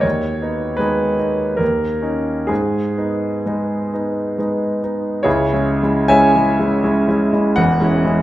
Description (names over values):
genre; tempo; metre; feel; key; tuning
classical, romantic character piece for solo piano; 62-89 BPM; 3/4; rubato; G# minor; A4 = 440 Hz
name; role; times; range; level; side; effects
clear concert grand piano; solo; 0.0-8.2 s; E1 to G#5; -15 LUFS; equal; none
room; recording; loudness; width
wet recital hall reverb, RT60 1.4 s; none; -15 LUFS; side -15 dB against mid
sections
0.0-5.3 A section; 5.3-8.2 B section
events
none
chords
0.0 G#m/D#; 1.6 D#5; 2.5 G#m; 5.3 C#m; 7.6 C#m/E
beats
| 0.04 0.80 1.60 | 2.49 3.46 4.39 | 5.26 6.11 6.85 | 7.58